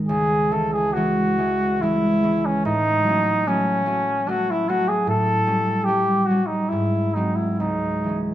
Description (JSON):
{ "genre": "classical, romantic duo for trumpet and harp", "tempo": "72 BPM", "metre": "3/4", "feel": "uneven beats, rubato", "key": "C# minor", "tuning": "A4 = 440 Hz", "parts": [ { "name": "concert harp", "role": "accompaniment", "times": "0.0-8.3 s", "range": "C#2 to D#4", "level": "-22 LUFS", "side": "right 1 dB", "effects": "none" }, { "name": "mellow trumpet", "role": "melody", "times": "0.1-8.2 s", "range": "C#4 to A4", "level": "-21 LUFS", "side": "equal", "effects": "none" } ], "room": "wet recital hall reverb, RT60 1.6 s", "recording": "close, detailed microphones", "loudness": "-19 LUFS", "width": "side -12 dB against mid", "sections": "0.0-8.3 A section", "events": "none", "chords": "0.1 C#m; 2.6 F#m/A; 5.1 A7; 6.7 G#7; 7.6 C#m" }